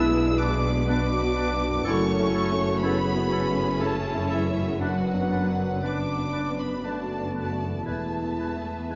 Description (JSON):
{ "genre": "cinematic", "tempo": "57-62 BPM", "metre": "3/4", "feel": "rubato", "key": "unclear", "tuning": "A4 = 441 Hz", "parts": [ { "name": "warm chamber violin section", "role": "melody", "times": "0.0-9.0 s", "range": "E5 to E6", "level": "-37 LUFS", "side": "equal", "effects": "none" }, { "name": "bright clarinet", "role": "second line", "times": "0.0-9.0 s", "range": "D4 to E4", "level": "-40 LUFS", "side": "equal", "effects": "none" }, { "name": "mellow large flute ensemble", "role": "second line", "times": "0.0-9.0 s", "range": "E5 to E6", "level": "-38 LUFS", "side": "equal", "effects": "none" }, { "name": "warm oboe", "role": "second line", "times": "0.0-9.0 s", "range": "A4 to B4", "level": "-42 LUFS", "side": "equal", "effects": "none" }, { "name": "warm studio violin section", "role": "second line", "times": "0.0-9.0 s", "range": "F#4 to E5", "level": "-38 LUFS", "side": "equal", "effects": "none" }, { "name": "warm grand piano", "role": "accompaniment", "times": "0.0-9.0 s", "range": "B1 to B4", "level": "-35 LUFS", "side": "equal", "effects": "none" }, { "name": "warm symphonic viola section", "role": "accompaniment", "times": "0.0-9.0 s", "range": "F#3 to B4", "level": "-35 LUFS", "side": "equal", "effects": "none" }, { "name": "mellow French horn section", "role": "sustained chords", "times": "0.0-9.0 s", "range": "E3 to E4", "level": "-34 LUFS", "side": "equal", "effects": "none" }, { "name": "concert harp", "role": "arpeggios", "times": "0.0-9.0 s", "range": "E2 to B4", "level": "-37 LUFS", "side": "equal", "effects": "none" }, { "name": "clear symphonic double bass section", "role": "bass", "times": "0.0-9.0 s", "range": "E1 to B1", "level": "-34 LUFS", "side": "equal", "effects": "none" }, { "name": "warm symphonic cello section", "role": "bass", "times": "0.0-9.0 s", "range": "E2 to B2", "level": "-33 LUFS", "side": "equal", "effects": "none" } ], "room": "moderate scoring stage reverb, RT60 1.9 s", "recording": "worn, warbling old tape, cassette tape, warbly pitch drift, nothing above 7.5 kHz", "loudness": "-26 LUFS", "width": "mono", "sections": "0.0-9.0 A section", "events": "none", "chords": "0.0 Bm; 1.9 F#m7; 4.8 Bm/F#; 7.9 E" }